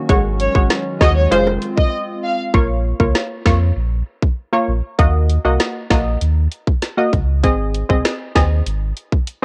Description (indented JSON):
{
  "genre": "dancehall",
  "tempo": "98 BPM",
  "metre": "4/4",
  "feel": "straight",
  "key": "Bb minor",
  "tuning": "A4 = 436 Hz",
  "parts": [
    { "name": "hollow soft pad", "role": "sustained chords", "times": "0.0-2.5 s", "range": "Eb3 to Gb4", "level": "-29 LUFS", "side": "equal", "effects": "chorus, sidechain pumping, cassette tape" },
    { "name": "punchy chord stab", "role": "accompaniment", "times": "0.1-9.4 s", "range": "Ab3 to Eb5", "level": "-22 LUFS", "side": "equal", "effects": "chorus, sidechain pumping, cassette tape" },
    { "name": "sub bass with octave", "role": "bass", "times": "0.1-8.9 s", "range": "F1 to F2", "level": "-20 LUFS", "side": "equal", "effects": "none" },
    { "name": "island pop drum kit", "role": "drums", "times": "0.1-9.4 s", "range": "hi-hat, kick drum, snare drum", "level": "-19 LUFS", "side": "equal", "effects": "cassette tape" },
    { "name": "bongos", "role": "percussion", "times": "0.1-1.6 s", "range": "none", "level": "-31 LUFS", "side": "equal", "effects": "none" },
    { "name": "warm studio violin section", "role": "melody", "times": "0.4-2.4 s", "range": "C5 to F5", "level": "-22 LUFS", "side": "equal", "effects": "cassette tape" }
  ],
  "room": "little or no reverb",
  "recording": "home recording on cassette",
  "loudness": "-17 LUFS",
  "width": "mono",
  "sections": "0.0-2.5 A section; 2.5-9.4 B section",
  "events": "break 1.9-2.5",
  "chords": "0.1 Ab7sus4; 1.3 Fm; 2.5 Bbm; 5.0 Ebm; 7.4 Ab"
}